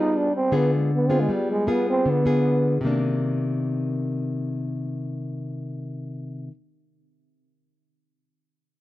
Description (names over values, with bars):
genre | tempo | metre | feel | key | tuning
bossa nova | 156 BPM | 4/4 | straight | C minor | A4 = 439 Hz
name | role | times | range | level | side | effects
growling trombone | melody | 0.0-2.8 s | G3 to Eb4 | -23 LUFS | right 2 dB | none
nylon-string guitar | accompaniment | 0.0-6.5 s | C3 to Ab4 | -24 LUFS | left 2 dB | none
room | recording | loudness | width
small room ambience | dry, close 1970s-style studio recording | -21 LUFS | side -16 dB against mid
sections
0.0-2.8 A section; 2.8-5.9 B section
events
trombone solo 0.0-2.8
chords
0.0 G7b9; 2.8 Cm9